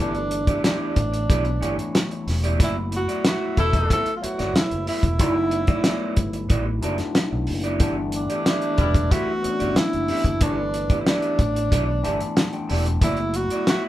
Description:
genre	lush 1970s-style soul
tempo	92 BPM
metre	4/4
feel	straight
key	unclear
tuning	A4 = 440 Hz
part	breathy tenor saxophone	melody	0.0-13.8 s	D4 to A4	-26 LUFS	right 1 dB	none
part	overdriven tine electric piano	accompaniment	0.0-13.9 s	E3 to A5	-29 LUFS	left 3 dB	phaser
part	electric guitar through a small old amp	riff	0.0-13.9 s	B3 to E5	-29 LUFS	right 3 dB	none
part	fingered electric bass	bass	0.0-13.5 s	E1 to B1	-26 LUFS	equal	none
part	cloth-damped thuddy drum kit	drums	0.1-13.8 s	hi-hat, kick drum, snare drum	-22 LUFS	equal	none
part	warm horn section	stabs	3.6-4.0, 8.8-9.2 s	B2 to E4	-28 LUFS	left 3 dB	none
room	moderate studio reverb, RT60 0.6 s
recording	band playing live in one room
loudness	-20 LUFS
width	side -14 dB against mid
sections	0.0-13.9 A section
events	tine electric piano fill 11.7-13.0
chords	0.0 G6; 2.6 D69; 7.8 G6; 13.0 D69

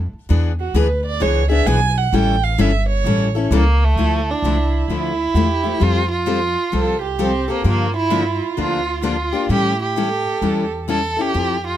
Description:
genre	acoustic string swing (jazz manouche)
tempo	130 BPM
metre	4/4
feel	swing 64% on 8ths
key	D minor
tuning	A4 = 442 Hz
part	upright bass	bass	0.0-11.8 s	G1 to A2	-20 LUFS	equal	none
part	picked steel-string acoustic guitar	accompaniment	0.3-11.6 s	D3 to A4	-20 LUFS	left 5 dB	none
part	dark violin	second line	0.6-11.8 s	E4 to G#5	-24 LUFS	right 8 dB	none
part	warm violin	melody	3.5-11.8 s	A3 to A4	-21 LUFS	right 3 dB	none
room	little or no reverb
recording	close, detailed microphones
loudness	-16 LUFS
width	side -12 dB against mid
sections	0.0-4.0 A section; 4.0-11.8 B section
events	violin solo 0.0-4.0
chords	0.3 E7; 2.1 A7; 4.0 Dmadd9; 5.8 Fadd9; 7.7 Gm7; 9.5 A7

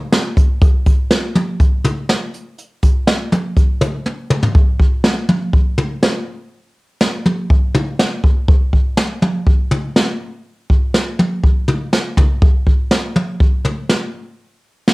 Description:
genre	pop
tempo	122 BPM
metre	4/4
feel	straight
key	none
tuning	none
part	jazz brush drum kit	drums	0.1-14.9 s	hi-hat, kick drum, snare drum, toms	-13 LUFS	equal	cassette tape
room	moderate studio reverb, RT60 0.7 s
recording	home recording on cassette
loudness	-13 LUFS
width	side -23 dB against mid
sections	0.0-4.5 A section; 4.5-14.9 B section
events	drum fill 4.1-4.5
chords	none

